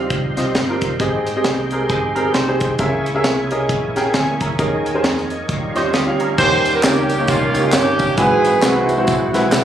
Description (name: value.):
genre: uptempo gospel.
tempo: 134 BPM.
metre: 4/4.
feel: swing 60% on 8ths.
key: Ab major.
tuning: A4 = 439 Hz.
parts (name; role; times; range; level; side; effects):
clear concert grand piano; accompaniment; 0.0-9.6 s; Ab2 to Bb5; -19 LUFS; left 1 dB; none.
overdriven tonewheel organ; sustained chords; 0.0-9.6 s; Eb3 to Ab5; -24 LUFS; right 3 dB; slow rotary speaker, chorus vibrato.
vintage muted fingered electric bass; bass; 0.0-9.6 s; G1 to F2; -26 LUFS; equal; none.
tight funk drum kit; drums; 0.1-9.6 s; crash cymbal, hi-hat, kick drum, snare drum; -21 LUFS; right 1 dB; none.
electric guitar with an envelope filter; second line; 1.9-2.8, 5.8-6.6 s; C4 to Eb5; -24 LUFS; right 5 dB; none.
warm horn section; melody; 6.4-9.5 s; Bb3 to C5; -16 LUFS; right 2 dB; none.
tambourine and handclaps; percussion; 6.4-9.6 s; none; -28 LUFS; right 1 dB; none.
room: light reverb, small room ambience.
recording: recorded on a phone in the room, club reverb, compression.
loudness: -15 LUFS.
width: side -10 dB against mid.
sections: 0.0-6.4 A section; 6.4-9.6 B section.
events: tonewheel organ fill 9.1-9.6.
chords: 0.0 Dbmaj9#11; 1.0 Abmaj7; 2.8 Dbm6; 4.6 Eb7sus4; 5.5 Eb9; 6.4 Eb7; 8.2 Ab7alt.